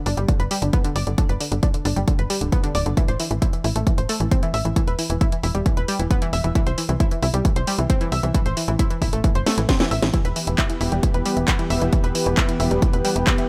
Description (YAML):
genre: uplifting trance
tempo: 134 BPM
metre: 4/4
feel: straight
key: E minor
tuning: A4 = 442 Hz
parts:
  - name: analog pluck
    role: arpeggios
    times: 0.1-13.5 s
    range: D3 to E5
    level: -28 LUFS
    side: equal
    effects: chorus, sidechain pumping, digital delay
  - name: tight sequencer bass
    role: bass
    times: 0.1-13.3 s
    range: D1 to C2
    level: -25 LUFS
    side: equal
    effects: sidechain pumping
  - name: house drum kit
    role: drums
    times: 0.1-13.5 s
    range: handclaps, hi-hat, snare drum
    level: -29 LUFS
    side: equal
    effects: sidechain pumping on hats
  - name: electronic kick drum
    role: drums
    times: 0.3-13.4 s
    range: none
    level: -22 LUFS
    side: equal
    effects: none
room: digital ambience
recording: none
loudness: -21 LUFS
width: mono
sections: 0.0-13.5 A section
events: drum fill 9.5-10.1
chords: 0.0 G; 3.0 Am; 4.8 Em; 6.6 C; 8.3 Am; 10.1 Em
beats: 0.29 0.73 | 1.18 1.63 2.08 2.52 | 2.97 3.42 3.87 4.32 | 4.76 5.21 5.66 6.11 | 6.55 7.00 7.45 7.90 | 8.35 8.79 9.24 9.69 | 10.14 10.58 11.03 11.48 | 11.93 12.38 12.82 13.27